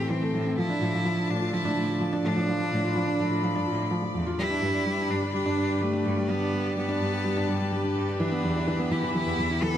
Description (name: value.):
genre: piano and strings electronica.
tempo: 126 BPM.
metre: 4/4.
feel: straight.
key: G mixolydian.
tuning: A4 = 440 Hz.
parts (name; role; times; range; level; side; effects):
rich cello; melody; 0.0-9.8 s; A3 to A4; -31 LUFS; equal; tape echo.
rich chamber string section; sustained chords; 0.0-9.8 s; F3 to B5; -34 LUFS; left 3 dB; none.
felt-muted upright piano; riff; 0.0-9.8 s; E3 to G4; -27 LUFS; equal; tape echo.
rich chamber cello section; bass; 0.0-9.6 s; E2 to A2; -32 LUFS; equal; none.
room: light reverb, studio ambience.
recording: none.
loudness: -24 LUFS.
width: side -10 dB against mid.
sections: 0.0-9.8 A section.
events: none.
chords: 0.0 Am7; 0.6 Dm/A; 4.4 G; 8.2 Em.